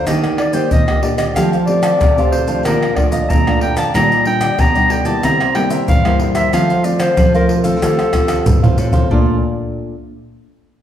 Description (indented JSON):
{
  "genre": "samba and choro",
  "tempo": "93 BPM",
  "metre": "4/4",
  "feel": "straight",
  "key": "Bb major",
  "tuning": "A4 = 441 Hz",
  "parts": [
    { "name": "mellow clarinet", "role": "melody", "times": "0.0-9.4 s", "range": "F4 to Bb5", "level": "-17 LUFS", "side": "left 1 dB", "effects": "none" },
    { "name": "cavaquinho", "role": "accompaniment", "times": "0.0-9.4 s", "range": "D4 to Bb5", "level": "-24 LUFS", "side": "right 2 dB", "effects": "none" },
    { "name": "nylon-string guitar", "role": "accompaniment", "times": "0.0-9.9 s", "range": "F2 to G4", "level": "-21 LUFS", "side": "left 2 dB", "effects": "none" },
    { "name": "nylon-string guitar", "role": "bass", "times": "0.0-9.4 s", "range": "G2 to F3", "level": "-20 LUFS", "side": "right 1 dB", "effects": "none" },
    { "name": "maracas, surdo, pandeiro and tamborim", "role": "percussion", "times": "0.1-9.3 s", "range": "none", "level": "-16 LUFS", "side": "equal", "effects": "none" }
  ],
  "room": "wet large studio reverb, RT60 1.3 s",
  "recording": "heard from further back in the room",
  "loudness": "-12 LUFS",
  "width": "side -10 dB against mid",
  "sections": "0.0-9.1 A section; 9.1-10.8 B section",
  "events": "drum fill 8.3-9.1",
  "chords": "0.1 Ebmaj7; 1.4 Fadd9; 2.7 Bbmaj7; 3.9 Ebmaj7/Bb; 5.2 C7; 6.5 F; 9.1 Bbmaj7",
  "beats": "0.07 0.72 | 1.36 2.01 2.65 3.30 | 3.95 4.59 5.24 5.88 | 6.53 7.17 7.82 8.46 | 9.11 9.76"
}